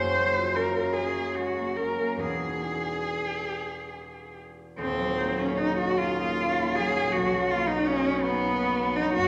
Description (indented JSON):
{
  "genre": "classical, impressionist duo for cello and harp",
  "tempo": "45-56 BPM (dotted quarters)",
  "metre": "6/8",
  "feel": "rubato",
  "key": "unclear",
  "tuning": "A4 = 440 Hz",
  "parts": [
    { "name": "warm cello", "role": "melody", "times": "0.0-9.3 s", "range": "B3 to C5", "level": "-29 LUFS", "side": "equal", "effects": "none" },
    { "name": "concert harp", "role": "accompaniment", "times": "0.0-9.3 s", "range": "Eb1 to G#4", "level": "-32 LUFS", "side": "equal", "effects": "none" }
  ],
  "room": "wet recital hall reverb, RT60 1.6 s",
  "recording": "none",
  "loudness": "-27 LUFS",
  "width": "mono",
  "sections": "0.0-4.8 A section; 4.8-9.3 B section",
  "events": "none",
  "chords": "0.0 Gbmaj9; 2.2 Emaj7; 4.8 Ebm9; 7.1 Bmaj9"
}